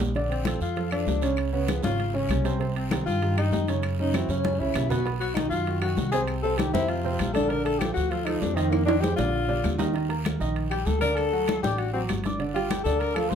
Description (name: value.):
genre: Afro-Cuban jazz.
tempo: 196 BPM.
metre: 4/4.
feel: straight.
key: unclear.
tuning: A4 = 438 Hz.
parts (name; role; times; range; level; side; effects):
warm grand piano; accompaniment; 0.0-13.3 s; Cb3 to D6; -29 LUFS; right 4 dB; none.
upright bass; bass; 0.0-13.3 s; G1 to G2; -29 LUFS; equal; none.
guiro; percussion; 0.0-13.3 s; none; -43 LUFS; right 5 dB; none.
timbales; percussion; 0.0-13.3 s; none; -33 LUFS; right 6 dB; none.
congas; percussion; 0.2-13.3 s; none; -32 LUFS; left 3 dB; none.
breathy tenor saxophone; second line; 0.3-13.3 s; Bb3 to C5; -28 LUFS; left 5 dB; slapback echo.
claves; percussion; 0.5-13.3 s; none; -40 LUFS; left 7 dB; none.
room: moderate studio reverb, RT60 0.5 s.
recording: none.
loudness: -23 LUFS.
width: side -8 dB against mid.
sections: 0.2-9.9 A section; 9.9-13.3 A section.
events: drum fill 0.0, 4.1-5.1, 8.7-9.9; tenor saxophone solo 0.2-13.3.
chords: 0.2 Bbmaj9; 1.4 Db7; 2.6 Cm; 3.8 Gb5; 5.1 B; 6.3 Cm; 6.9 F5; 7.5 Bbmaj7; 8.7 Fm7; 9.3 Bb; 9.9 Ebmaj7; 11.2 D; 12.4 Gsus2.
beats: | 0.15 0.46 0.77 1.07 | 1.38 1.69 1.99 2.30 | 2.61 2.91 3.22 3.52 | 3.83 4.14 4.44 4.75 | 5.05 5.36 5.67 5.97 | 6.28 6.58 6.89 7.20 | 7.50 7.81 8.11 8.42 | 8.72 9.03 9.34 9.64 | 9.95 10.25 10.56 10.86 | 11.17 11.48 11.78 12.09 | 12.39 12.70 13.01 13.31.